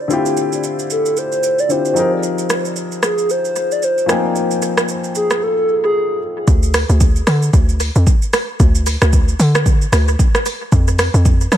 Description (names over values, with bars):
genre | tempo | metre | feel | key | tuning
amapiano | 113 BPM | 4/4 | swing 58% on 16ths | unclear | A4 = 441 Hz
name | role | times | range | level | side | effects
warm baby grand piano | accompaniment | 0.0-6.5 s | D3 to Ab5 | -20 LUFS | left 4 dB | low-pass filter
deep house drum kit | drums | 0.1-11.6 s | hi-hat, kick drum, rim click, shaker | -16 LUFS | equal | overdrive, analog delay
hollow clarinet-like synth lead | melody | 0.9-6.2 s | Ab4 to D5 | -18 LUFS | equal | chorus, low-pass filter, analog delay
hollow log drum bass | bass | 6.5-11.6 s | D2 to F3 | -14 LUFS | equal | none
room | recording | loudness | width
light reverb | echo-heavy mix | -13 LUFS | side -11 dB against mid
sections
0.0-6.5 A section; 6.5-11.6 B section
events
drop 6.5-11.6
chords
0.0 Dm11; 2.0 Fm11; 6.5 N.C.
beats
| 0.10 0.64 1.17 1.70 | 2.23 2.76 3.29 3.82 | 4.35 4.88 5.42 5.95 | 6.48 7.01 7.54 8.07 | 8.60 9.13 9.66 10.19 | 10.72 11.26